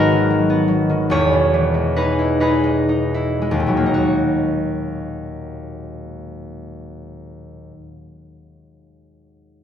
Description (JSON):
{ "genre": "classical, solo harp piece", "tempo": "37-54 BPM (dotted quarters)", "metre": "6/8", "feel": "rubato", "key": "unclear", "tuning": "A4 = 440 Hz", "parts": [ { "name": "concert harp", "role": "solo", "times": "0.0-8.1 s", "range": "E1 to Ab5", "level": "-17 LUFS", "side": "equal", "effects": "none" } ], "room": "wet recital hall reverb, RT60 1.7 s", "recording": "recorded in a church or concert hall", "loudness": "-16 LUFS", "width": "side -9 dB against mid", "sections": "0.0-3.9 A section; 3.9-9.6 B section", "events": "slowing down 0.0-3.9", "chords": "0.0 Abm9; 1.1 Emaj7; 3.9 Ebm" }